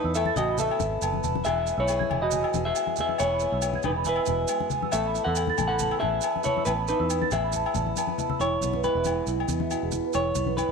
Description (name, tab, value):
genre	highlife guitar band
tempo	138 BPM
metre	4/4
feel	straight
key	E major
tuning	A4 = 441 Hz
part	semi-hollow electric guitar	melody	0.0-10.7 s	D#4 to F#5	-27 LUFS	equal	spring reverb
part	picked old ladder-braced acoustic guitar	accompaniment	0.0-10.7 s	E2 to G#4	-34 LUFS	left 10 dB	none
part	marimba with medium mallets	arpeggios	0.0-10.7 s	E4 to A6	-31 LUFS	right 11 dB	slapback echo
part	fingered electric bass	bass	0.0-10.7 s	E1 to E2	-31 LUFS	right 1 dB	none
part	maracas	percussion	0.1-10.7 s	none	-38 LUFS	right 14 dB	none
part	agogo bells	percussion	0.2-10.7 s	none	-36 LUFS	left 15 dB	none
part	congas	percussion	0.3-10.7 s	none	-34 LUFS	left 7 dB	none
room	moderate echo chamber reverb, RT60 1.6 s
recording	1960s-style stereo with parts hard left and right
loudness	-23 LUFS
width	side -5 dB against mid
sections	0.0-8.4 A section; 8.4-10.7 B section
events	drum fill 7.9-8.4; clean electric guitar solo 8.4-10.7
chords	0.0 Asus2; 1.5 E; 4.9 Asus2; 8.4 E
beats	0.15 0.58 1.02 | 1.45 1.89 2.32 2.76 | 3.19 3.62 4.06 4.49 | 4.93 5.36 5.80 6.23 | 6.67 7.10 7.54 7.97 | 8.40 8.84 9.27 9.71 | 10.14 10.58